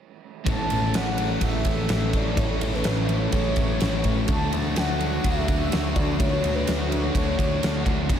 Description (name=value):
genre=rock, shoegaze and dream pop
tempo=126 BPM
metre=4/4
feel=straight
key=A major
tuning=A4 = 440 Hz
part: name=raw garage guitar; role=riff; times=0.4-8.2 s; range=E2 to F#4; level=-32 LUFS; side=right 7 dB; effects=overdrive, reverse reverb
part: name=mellow horn-like synth lead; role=melody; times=0.5-8.2 s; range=B4 to A5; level=-30 LUFS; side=equal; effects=chorus, tape echo
part: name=icy glass pad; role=sustained chords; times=1.1-8.2 s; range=D4 to C#6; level=-34 LUFS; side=right 2 dB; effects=chorus, built-in reverb
part: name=thick fuzz guitar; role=riff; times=0.5-8.2 s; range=E2 to D4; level=-29 LUFS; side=left 8 dB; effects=distortion, wide subtle chorus
part: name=growling picked electric bass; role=bass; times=0.5-8.2 s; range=E1 to D2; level=-27 LUFS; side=right 1 dB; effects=overdrive
part: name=huge arena drum kit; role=drums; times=0.5-8.2 s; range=kick drum, ride cymbal, snare drum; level=-26 LUFS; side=equal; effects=none
room=moderate lush hall reverb, RT60 1.9 s, small room ambience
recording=dreamy mix soaked in reverb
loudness=-21 LUFS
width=side -9 dB against mid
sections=0.5-8.2 A section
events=none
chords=0.5 A; 4.3 Dmaj7